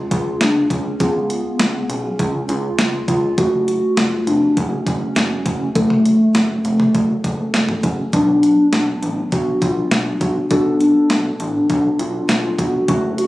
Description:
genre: synth-pop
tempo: 101 BPM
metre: 4/4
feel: straight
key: unclear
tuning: A4 = 440 Hz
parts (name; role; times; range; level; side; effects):
- hollow clarinet-like synth lead; melody; 0.0-13.3 s; A3 to F#4; -19 LUFS; equal; chorus, digital delay
- muted felt-like synth keys; accompaniment; 0.0-13.3 s; F#3 to A4; -22 LUFS; left 1 dB; chorus
- chorused synth bass; bass; 0.0-13.3 s; E#1 to C#2; -24 LUFS; equal; none
- clean 12-bit digital drum machine; drums; 0.1-13.3 s; hi-hat, kick drum, snare drum, toms; -20 LUFS; equal; overdrive
room: light reverb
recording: recorded on a phone in the room, studio reverb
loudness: -15 LUFS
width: side -17 dB against mid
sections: 0.0-13.3 A section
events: none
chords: 0.0 C#; 3.4 F#m; 8.1 Bm

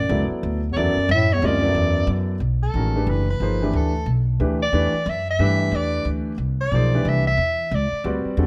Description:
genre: jazz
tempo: 181 BPM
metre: 3/4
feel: swing 62% on 8ths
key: G major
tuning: A4 = 441 Hz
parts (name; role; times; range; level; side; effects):
- warm soprano saxophone; melody; 0.0-8.1 s; A4 to E5; -26 LUFS; equal; none
- mellow bass clarinet; second line; 0.0-2.1 s; E2 to A2; -26 LUFS; equal; none
- upright bass; bass; 0.0-8.5 s; F#1 to G2; -24 LUFS; equal; none
- warm concert grand piano; accompaniment; 0.1-8.5 s; D3 to Eb5; -28 LUFS; equal; none
room: light reverb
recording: close, detailed microphones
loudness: -21 LUFS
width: mono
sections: 0.0-2.4 A section; 2.4-8.5 B section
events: soprano saxophone solo 2.4-8.5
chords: 0.0 Dadd9; 2.4 Gmaj9; 6.4 Cmaj9

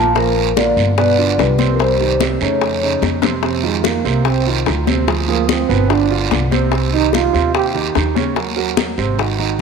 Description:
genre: Afro-Cuban jazz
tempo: 146 BPM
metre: 4/4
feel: straight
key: F minor from 3.4 s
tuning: A4 = 438 Hz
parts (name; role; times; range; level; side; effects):
- vibraphone with soft mallets; melody; 0.0-3.0 s; Bb4 to A5; -17 LUFS; left 4 dB; slapback echo
- breathy trombone; second line; 0.0-7.7 s; F3 to G4; -21 LUFS; right 10 dB; none
- warm grand piano; accompaniment; 0.0-9.6 s; Bb2 to Db5; -20 LUFS; right 10 dB; none
- upright bass; bass; 0.0-9.6 s; G1 to F2; -20 LUFS; left 1 dB; none
- bongos; percussion; 0.2-9.6 s; none; -23 LUFS; left 13 dB; none
- congas; percussion; 0.2-9.6 s; none; -23 LUFS; left 13 dB; none
- guiro; percussion; 0.2-9.6 s; none; -25 LUFS; right 11 dB; none
room: light reverb, small room ambience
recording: 1960s-style stereo with parts hard left and right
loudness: -14 LUFS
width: side -5 dB against mid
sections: 0.0-3.4 A section; 3.4-9.6 B section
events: drum fill 3.0-3.4; trombone solo 3.4-9.6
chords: 0.2 Bb; 1.0 G7; 1.8 Cm; 2.6 F7b13; 3.4 F5; 5.1 Dm7b5; 5.9 G5; 6.7 Cm; 8.4 Ebmadd11

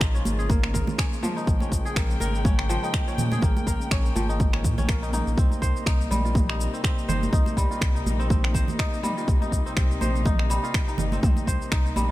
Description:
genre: afro house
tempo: 123 BPM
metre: 4/4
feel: swing 56% on 16ths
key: unclear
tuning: A4 = 440 Hz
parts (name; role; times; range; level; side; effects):
- muted chamber string section; sustained chords; 0.0-12.1 s; C3 to G5; -33 LUFS; left 1 dB; vintage 12-bit sampler grit, sidechain pumping
- kora; arpeggios; 0.0-12.1 s; F3 to C5; -31 LUFS; equal; sidechain pumping, tape echo
- warm sub bass; bass; 0.0-12.1 s; G1 to Bb2; -26 LUFS; equal; sidechain pumping
- electronic kick drum; drums; 0.0-11.8 s; none; -23 LUFS; equal; overdrive
- house drum kit; drums; 0.0-12.1 s; finger snaps, shaker, toms; -31 LUFS; equal; overdrive
- congas; percussion; 0.3-12.1 s; none; -32 LUFS; right 3 dB; none
room: small room ambience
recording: none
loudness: -21 LUFS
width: side -16 dB against mid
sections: 0.0-12.1 A section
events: none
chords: 0.0 Bbm7; 5.4 Cm7

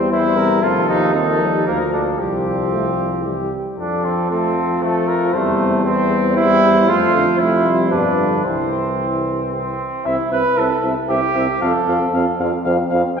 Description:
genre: classical, brass quintet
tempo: 115 BPM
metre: 3/4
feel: straight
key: C major from 6.9 s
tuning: A4 = 439 Hz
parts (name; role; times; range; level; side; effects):
- mellow trumpet; melody; 0.0-13.2 s; G4 to F5; -23 LUFS; left 5 dB; none
- mellow trumpet; second line; 0.0-12.4 s; A3 to B4; -19 LUFS; right 2 dB; none
- mellow French horn; accompaniment; 0.0-13.2 s; E3 to E4; -24 LUFS; left 3 dB; none
- warm euphonium; accompaniment; 0.0-13.2 s; B2 to C4; -24 LUFS; right 1 dB; none
- warm bass trombone; bass; 0.0-13.0 s; C2 to G2; -22 LUFS; right 1 dB; none
room: wet concert hall reverb, RT60 2.1 s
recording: recorded in a church or concert hall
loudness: -15 LUFS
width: side -6 dB against mid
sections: 0.0-10.1 A section; 10.1-13.2 B section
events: none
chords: 0.0 C/E; 0.6 F7/Eb; 1.7 Bb/D; 2.2 Csus4; 3.2 C; 3.8 F; 5.3 C/E; 6.9 Fmaj7; 7.9 G7; 8.4 C; 11.6 F

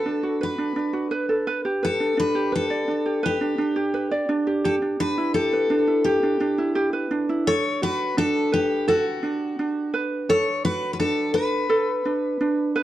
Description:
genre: pop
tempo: 85 BPM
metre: 4/4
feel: straight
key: D major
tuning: A4 = 443 Hz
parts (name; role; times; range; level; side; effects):
- picked steel-string acoustic guitar; melody; 0.0-12.7 s; F#4 to C#5; -25 LUFS; left 3 dB; tape echo
- ukulele; accompaniment; 0.0-12.8 s; D4 to D5; -23 LUFS; right 2 dB; none
room: moderate studio reverb, RT60 0.8 s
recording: worn, warbling old tape, cassette tape, warbly pitch drift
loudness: -21 LUFS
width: side -13 dB against mid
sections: 0.0-7.5 A section; 7.5-12.8 B section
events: none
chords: 0.0 D6; 1.5 G; 4.6 Em7; 7.5 D6

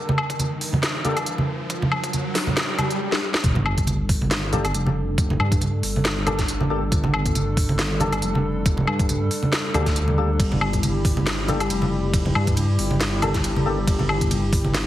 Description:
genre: deep dubstep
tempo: 138 BPM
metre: 4/4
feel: swing 55% on 16ths, half-time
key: G dorian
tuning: A4 = 445 Hz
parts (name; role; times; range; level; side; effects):
- dark analog pad; sustained chords; 0.0-14.9 s; G3 to Bb4; -29 LUFS; left 2 dB; lush chorus
- riser, swell and sub drop; sound effects; 0.0-5.2 s; none; -29 LUFS; equal; none
- congas; percussion; 0.1-14.7 s; none; -26 LUFS; right 2 dB; none
- garage drum kit; drums; 0.2-14.8 s; hi-hat, ride cymbal, snare drum, woodblock; -26 LUFS; equal; none
- electronic kick drum; drums; 0.3-14.6 s; none; -24 LUFS; equal; high-pass filter on kick
- percussive organ stab; stabs; 1.0-1.2, 4.5-13.8 s; Bb3 to A4; -30 LUFS; left 2 dB; ensemble chorus, dub echo
- dark detuned saw bass; bass; 3.4-14.9 s; F1 to G2; -24 LUFS; equal; none
room: moderate spring reverb, RT60 1.5 s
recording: heavily compressed radio sound, vinyl crackle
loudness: -19 LUFS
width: side -13 dB against mid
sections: 0.0-3.4 A section; 3.4-14.9 B section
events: build-up 0.0-3.4; riser 0.0-3.0; swell 2.6-3.4; drum fill 3.1-3.4; drop 3.4-14.9; impact 3.4-5.2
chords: 0.0 Gm; 3.4 Gmadd9

